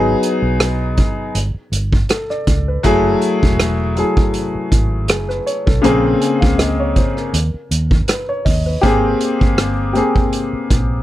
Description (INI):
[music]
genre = lush 1970s-style soul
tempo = 80 BPM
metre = 4/4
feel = swing 54% on 16ths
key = unclear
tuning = A4 = 444 Hz
[part]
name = warm grand piano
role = accompaniment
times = 0.0-11.0 s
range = C#3 to G#5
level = -17 LUFS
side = left 2 dB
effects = none
[part]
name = vintage muted fingered electric bass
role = bass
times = 0.0-11.0 s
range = E1 to D#2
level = -19 LUFS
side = right 1 dB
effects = none
[part]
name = vintage drum kit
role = drums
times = 0.2-10.9 s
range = hi-hat, kick drum, rim click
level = -17 LUFS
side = right 1 dB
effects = none
[sound]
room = little or no reverb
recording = none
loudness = -14 LUFS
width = side -14 dB against mid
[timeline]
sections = 0.0-11.0 A section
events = none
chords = 0.0 G#m7; 1.3 Gsus2; 2.8 F#m9; 5.8 A#m9; 7.3 Bmaj9/D#; 8.8 G#maj9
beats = 0.60 1.35 2.10 | 2.84 3.59 4.34 5.09 | 5.84 6.59 7.33 8.08 | 8.83 9.58 10.33